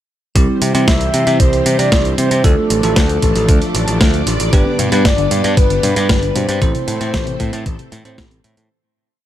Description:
italo disco; 115 BPM; 4/4; straight; C major; A4 = 440 Hz
string machine, full ensemble; sustained chords; 0.4-8.7 s; E3 to D5; -21 LUFS; equal; ensemble chorus, shimmer reverb
bell-like tine electric piano; stabs; 0.4-8.2 s; G3 to C5; -23 LUFS; right 2 dB; lush chorus, shimmer reverb
modern bright picked electric bass; bass; 0.4-8.7 s; G1 to C3; -18 LUFS; equal; tube saturation
clean 12-bit digital drum machine; drums; 0.4-8.7 s; hi-hat, snare drum; -20 LUFS; equal; small room ambience
electronic kick drum; drums; 0.4-8.3 s; -14 LUFS; equal; small room ambience
soft octave-layered synth lead; melody; 0.9-8.2 s; A4 to E5; -19 LUFS; equal; chorus, digital delay, shimmer reverb
warbly dusty pluck; arpeggios; 4.5-8.5 s; A2 to G3; -24 LUFS; left 3 dB; chorus, digital delay
light reverb; -12 LUFS; side -12 dB against mid
0.4-8.7 verse
fade-out 5.9-8.7
0.4 C; 2.4 Dm; 4.5 G; 6.6 Am

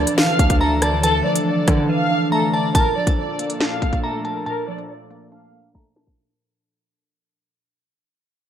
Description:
hip hop, drill; 140 BPM; 4/4; half-time; A4 = 440 Hz
dark studio violin section; melody; 0.0-6.1 s; A4 to F5; -23 LUFS; equal; tape echo
glassy digital keys; accompaniment; 0.0-6.2 s; Bb2 to D4; -23 LUFS; right 1 dB; chorus
airy breathy pad; sustained chords; 0.0-6.1 s; Bb2 to A4; -27 LUFS; left 1 dB; chorus
distorted 808-style bass; bass; 0.0-1.9 s; D2 to D3; -22 LUFS; equal; distortion
drill drum kit; drums; 0.1-6.2 s; hi-hat, kick drum, rim click, snare drum; -20 LUFS; equal
glassy synth bell; second line; 0.6-6.2 s; A5 to Bb5; -25 LUFS; left 1 dB; chorus, tape echo
digital ambience; dry, gritty hardware recording, low-pass filter; -17 LUFS; side -9 dB against mid
0.0-2.7 A section; 2.7-6.2 B section
drums muted 1.9-2.7; fade-out 2.7-6.2; filter sweep 2.7-6.2; drum fill 5.7-6.2
0.0 Dmadd9; 2.7 Bbmaj7

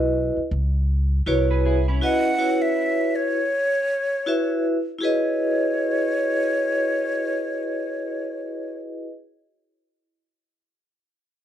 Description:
hip hop, jazz-hop; 80 BPM; 4/4; swing 59% on 16ths; C# minor; A4 = 440 Hz
vibraphone with hard mallets; accompaniment; 0.0-9.1 s; E4 to E5; -23 LUFS; equal
upright bass; bass; 0.0-2.0 s; B1 to C#2; -21 LUFS; equal
clean electric guitar; second line; 1.3-3.0 s; C#4 to C#5; -30 LUFS; right 1 dB; analog chorus, plate reverb
breathy jazz flute; melody; 2.0-8.8 s; C#5 to F#5; -24 LUFS; equal; slapback echo
moderate studio reverb, RT60 0.5 s; dark, warm production; -20 LUFS; side -10 dB against mid
0.0-5.0 A section; 5.0-8.0 B section
0.0 C#m11

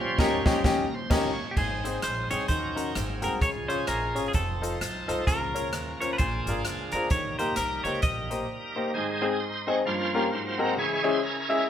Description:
uptempo gospel; 130 BPM; 4/4; swing 60% on 8ths; Ab major; A4 = 439 Hz
bright tonewheel organ; sustained chords; 0.0-11.7 s; Eb3 to Db5; -32 LUFS; right 2 dB; slow rotary speaker, overdrive
clear baby grand piano; accompaniment; 0.2-11.6 s; G2 to Fb5; -29 LUFS; left 2 dB
upright bass; bass; 0.2-8.4 s; F1 to Eb2; -36 LUFS; equal
swinging big-band drum kit; drums; 0.2-8.4 s; crash cymbal, hi-hat, kick drum, rim click, snare drum; -30 LUFS; right 1 dB
clean electric guitar; melody; 1.5-8.7 s; G4 to Eb5; -31 LUFS; equal
moderate studio reverb, RT60 0.7 s; band playing live in one room; -25 LUFS; side -9 dB against mid
0.0-1.6 A section; 1.6-8.9 B section; 8.9-11.7 C section
band accent 0.0-1.6; tonewheel organ solo 0.0-1.6, 8.9-11.7; break 8.5-8.9
0.0 Eb7; 1.6 Ab; 2.5 Ebm7; 3.0 Ab9; 3.4 Db; 4.3 F7; 5.3 Bbm/Db; 6.2 Bb7; 7.1 Eb; 8.9 Ab; 9.9 Gm7b5; 10.3 Ab9; 10.8 Dbm

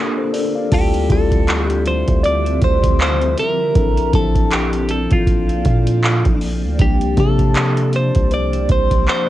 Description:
contemporary R&B; 79 BPM; 4/4; swing 58% on 16ths; D minor; A4 = 440 Hz
mellow tine electric piano; accompaniment; 0.0-9.3 s; F3 to F5; -22 LUFS; left 6 dB; medium stereo tremolo, cassette tape
granular cloud pad; sustained chords; 0.0-9.3 s; C3 to E5; -27 LUFS; equal; built-in reverb, cassette tape
booming analog drum machine; drums; 0.3-9.3 s; crash cymbal, handclaps, hi-hat, kick drum; -17 LUFS; right 1 dB; vintage 12-bit sampler grit, cassette tape
direct-recorded clean electric guitar; melody; 0.7-9.3 s; F4 to D5; -21 LUFS; right 1 dB; phaser, cassette tape, tape echo
long sustained 808-style bass; bass; 0.7-9.1 s; Bb1 to C3; -19 LUFS; right 1 dB
soft round pluck; texture; 0.7-3.0, 8.3-9.0 s; C5 to A5; -25 LUFS; equal; chorus, cassette tape, tape echo
light reverb; home recording on cassette; -14 LUFS; side -14 dB against mid
0.7-9.3 A section
break 0.0-0.7
0.0 Bbmaj9; 0.7 Dm11; 3.8 Bbmaj9#11; 6.8 C9sus4

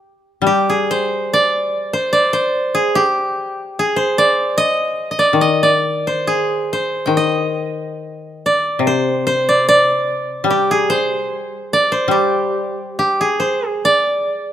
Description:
japanese traditional, Japanese chamber music; 67-76 BPM; 2/4; rubato; G miyako bushi; A4 = 440 Hz
koto; melody; 0.0-14.5 s; G4 to G5; -15 LUFS; right 1 dB
koto; accompaniment; 0.4-14.5 s; C3 to G3; -20 LUFS; left 4 dB
light reverb; close, detailed microphones; -14 LUFS; side -10 dB against mid
0.4-13.8 A section

